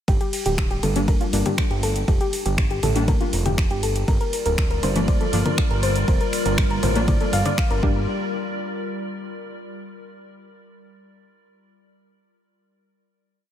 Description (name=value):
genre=melodic techno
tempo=120 BPM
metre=4/4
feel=straight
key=G minor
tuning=A4 = 440 Hz
part: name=soft round pluck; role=arpeggios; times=0.1-8.1 s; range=F4 to F5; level=-27 LUFS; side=left 1 dB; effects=chorus, cassette tape, sidechain pumping, ping-pong delay
part: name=fat analog bass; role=bass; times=0.1-8.1 s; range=D1 to A1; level=-24 LUFS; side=equal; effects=tube saturation, sidechain pumping
part: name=deep house drum kit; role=drums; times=0.1-7.8 s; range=congas, finger snaps, hi-hat, ride cymbal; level=-28 LUFS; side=left 1 dB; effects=overdrive
part: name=electronic kick drum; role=drums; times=0.1-7.9 s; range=none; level=-21 LUFS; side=equal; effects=overdrive
part: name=synth brass stab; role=stabs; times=1.0-8.0 s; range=F3 to D4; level=-28 LUFS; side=left 3 dB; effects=chorus, sidechain pumping, ping-pong delay
part: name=evolving wavetable pad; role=sustained chords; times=4.3-8.1 s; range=G3 to D5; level=-28 LUFS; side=equal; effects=chorus, built-in reverb, sidechain pumping
room=light reverb, digital ambience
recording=none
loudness=-19 LUFS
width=side -10 dB against mid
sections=0.1-8.1 drop; 8.1-10.1 final hit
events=drop 0.1-8.1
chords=0.1 Gm; 4.1 Bb; 7.8 Gm; 8.1 N.C.